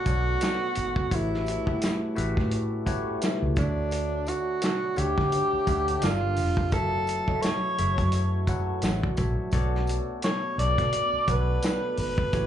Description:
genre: lush 1970s-style soul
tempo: 86 BPM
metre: 4/4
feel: swing 58% on 16ths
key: B minor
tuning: A4 = 440 Hz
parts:
  - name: breathy tenor saxophone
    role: melody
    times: 0.0-12.5 s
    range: D4 to D5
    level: -28 LUFS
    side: right 1 dB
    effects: slapback echo, tape echo
  - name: barky tine electric piano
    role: accompaniment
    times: 0.0-12.5 s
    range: D3 to B5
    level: -32 LUFS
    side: left 2 dB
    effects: overdrive, phaser, slapback echo
  - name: dark French horn section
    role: sustained chords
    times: 0.0-12.5 s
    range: C#3 to C#5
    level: -40 LUFS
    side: right 2 dB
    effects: none
  - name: vintage muted fingered electric bass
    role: bass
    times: 0.1-12.5 s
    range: F1 to D3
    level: -28 LUFS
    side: equal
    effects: none
  - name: warm soul drum kit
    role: drums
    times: 0.1-12.5 s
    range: hi-hat, kick drum, snare drum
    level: -29 LUFS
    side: equal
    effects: slapback echo
  - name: tambourine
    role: percussion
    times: 0.1-12.5 s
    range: none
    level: -47 LUFS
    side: right 5 dB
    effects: none
room: light reverb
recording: live gig heard through the venue's PA, club reverb, nothing above 10.8 kHz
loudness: -24 LUFS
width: side -10 dB against mid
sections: 0.0-12.5 A section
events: tine electric piano fill 8.1-9.5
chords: 0.0 Bm7; 1.1 A13; 3.6 Dmaj7; 6.0 Gm7; 6.7 F#m7; 9.5 Bm7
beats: 0.41 | 1.11 1.81 2.52 3.22 | 3.92 4.62 5.32 6.02 | 6.72 7.42 8.12 8.83 | 9.53 10.23 10.93 11.63 | 12.33

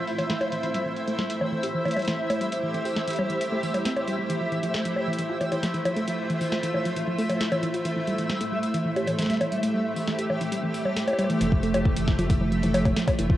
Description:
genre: IDM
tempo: 135 BPM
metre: 4/4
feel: straight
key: F major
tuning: A4 = 441 Hz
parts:
  - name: granular cloud pad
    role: sustained chords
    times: 0.0-13.4 s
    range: A3 to E5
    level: -28 LUFS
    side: equal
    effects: built-in reverb, cassette tape
  - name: soft round pluck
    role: arpeggios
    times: 0.0-13.3 s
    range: E3 to G4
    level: -29 LUFS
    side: right 1 dB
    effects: chorus, cassette tape, tape echo
  - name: twinkling granular texture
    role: texture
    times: 0.0-13.4 s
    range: E5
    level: -34 LUFS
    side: equal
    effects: built-in reverb, sidechain pumping, cassette tape
  - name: electro analog drum machine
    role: drums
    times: 0.1-13.3 s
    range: bongos, congas, hi-hat, snare drum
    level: -29 LUFS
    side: left 1 dB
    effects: low-pass filter on hats, low-pass filter on perc, low-pass filter on snare, low-pass filter on cymbals
  - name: round analog bass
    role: bass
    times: 11.4-13.4 s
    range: F1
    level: -28 LUFS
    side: equal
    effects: none
  - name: electronic kick drum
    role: drums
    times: 11.5-13.4 s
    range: none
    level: -23 LUFS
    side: equal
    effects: none
room: wet spring reverb, RT60 1.8 s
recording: home recording on cassette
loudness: -23 LUFS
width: side -14 dB against mid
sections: 0.0-11.4 A section; 11.4-13.4 B section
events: filter sweep on synth arpeggio sound 0.0-11.4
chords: 0.0 Fmaj7; 0.7 Am7; 4.3 Fmaj7; 7.9 Am7; 11.4 Fmaj7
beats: 0.30 | 0.74 1.19 1.63 2.08 | 2.52 2.96 3.41 3.85 | 4.30 4.74 5.19 5.63 | 6.08 6.52 6.96 7.41 | 7.85 8.30 8.74 9.19 | 9.63 10.08 10.52 10.96 | 11.41 11.85 12.30 12.74 | 13.19

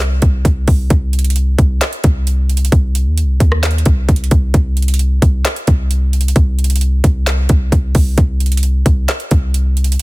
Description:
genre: hip hop, trap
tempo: 132 BPM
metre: 4/4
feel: half-time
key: C minor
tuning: A4 = 440 Hz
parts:
  - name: long sustained 808-style bass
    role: bass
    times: 0.0-10.0 s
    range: C2 to Eb2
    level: -14 LUFS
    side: equal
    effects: none
  - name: trap drum kit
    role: drums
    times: 0.0-10.0 s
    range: handclaps, hi-hat, kick drum, rim click, snare drum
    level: -14 LUFS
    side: equal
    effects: none
room: little or no reverb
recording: dense, heavily limited modern master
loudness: -12 LUFS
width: side -22 dB against mid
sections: 0.0-10.0 A section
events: none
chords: none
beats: 0.45 | 0.90 1.36 1.81 2.27 | 2.72 3.18 3.63 4.09 | 4.54 5.00 5.45 5.90 | 6.36 6.81 7.27 7.72 | 8.18 8.63 9.09 9.54 | 9.99

